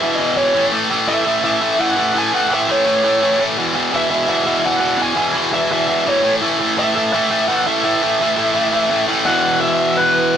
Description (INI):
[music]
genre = punk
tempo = 169 BPM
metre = 4/4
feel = straight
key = unclear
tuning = A4 = 440 Hz
[part]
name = bluesy overdriven lead guitar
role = melody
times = 0.0-10.4 s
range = B4 to G#5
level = -18 LUFS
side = right 1 dB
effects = distortion
[part]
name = distorted electric guitar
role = riff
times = 0.0-10.4 s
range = E2 to A3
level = -16 LUFS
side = equal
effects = overdrive
[sound]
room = moderate small room reverb, RT60 0.5 s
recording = rough rehearsal-room recording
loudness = -14 LUFS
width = side -8 dB against mid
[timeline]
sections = 0.0-9.2 A section; 9.2-10.4 B section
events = none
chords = 0.0 E5; 0.5 A; 3.6 E5; 6.2 A5; 9.2 E5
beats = 0.01 0.36 | 0.72 1.07 1.43 1.79 | 2.14 2.50 2.85 3.21 | 3.57 3.92 4.28 4.63 | 4.99 5.35 5.70 6.06 | 6.41 6.77 7.12 7.48 | 7.83 8.19 8.54 8.90 | 9.25 9.60 9.96 10.31